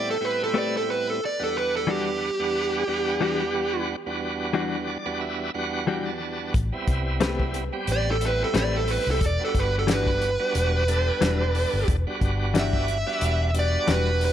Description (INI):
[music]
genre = straight-eighth soul blues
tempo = 90 BPM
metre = 4/4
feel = swing 56% on 16ths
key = E minor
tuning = A4 = 440 Hz
[part]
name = dark smooth lead guitar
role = melody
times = 0.0-3.9, 7.9-14.3 s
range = G4 to E5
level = -25 LUFS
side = right 2 dB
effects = overdrive
[part]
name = bright tonewheel organ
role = accompaniment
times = 0.0-14.3 s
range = E2 to A5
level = -29 LUFS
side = right 2 dB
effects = slow rotary speaker, overdrive
[part]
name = direct-recorded clean electric guitar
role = stabs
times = 0.5-14.1 s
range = E3 to B4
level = -28 LUFS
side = left 5 dB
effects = analog delay
[part]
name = vintage muted fingered electric bass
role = bass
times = 6.5-14.3 s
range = E1 to C2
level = -25 LUFS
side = equal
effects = none
[part]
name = warm soul drum kit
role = drums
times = 6.5-14.3 s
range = hi-hat, kick drum, snare drum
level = -27 LUFS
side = left 1 dB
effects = none
[sound]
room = light reverb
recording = none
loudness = -22 LUFS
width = side -10 dB against mid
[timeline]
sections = 0.0-14.3 A section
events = tonewheel organ fill 4.5-6.5, 10.5-11.9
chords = 0.0 Am9; 1.2 Em9; 6.5 Am9; 9.2 Em9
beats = 0.54 | 1.21 1.88 2.54 3.21 | 3.88 4.54 5.21 5.88 | 6.54 7.21 7.88 8.54 | 9.21 9.88 10.54 11.21 | 11.88 12.54 13.21 13.88